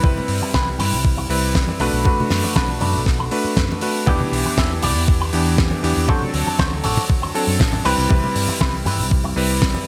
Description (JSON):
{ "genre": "nu-disco, nu disco", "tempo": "119 BPM", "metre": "4/4", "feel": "straight", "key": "unclear", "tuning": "A4 = 440 Hz", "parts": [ { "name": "warm electric grand piano", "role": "accompaniment", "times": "0.0-9.8 s", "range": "E3 to B4", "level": "-25 LUFS", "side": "equal", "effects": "sidechain pumping, delay" }, { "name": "electric guitar with an envelope filter", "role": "riff", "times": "0.0-9.4 s", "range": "C4 to E5", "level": "-28 LUFS", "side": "equal", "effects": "subtle chorus, delay" }, { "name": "fingered electric bass", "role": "bass", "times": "0.0-9.7 s", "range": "A1 to G2", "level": "-25 LUFS", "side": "equal", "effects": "sidechain pumping" }, { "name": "electronic kick drum", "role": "drums", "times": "0.0-9.7 s", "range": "none", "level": "-21 LUFS", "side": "equal", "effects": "none" }, { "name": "congas", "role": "percussion", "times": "0.0-9.8 s", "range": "none", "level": "-32 LUFS", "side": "equal", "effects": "none" }, { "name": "damped 70s drum kit", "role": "drums", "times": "0.3-9.7 s", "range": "hi-hat, snare drum", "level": "-26 LUFS", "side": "equal", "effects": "gated reverb" } ], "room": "light reverb, studio reverb", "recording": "bright 1980s-style digital production", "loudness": "-19 LUFS", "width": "mono", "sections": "0.0-9.9 A section", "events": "none", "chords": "0.0 Cmaj7; 1.8 Bm7; 4.1 Em7; 6.1 D7; 7.9 Cmaj7" }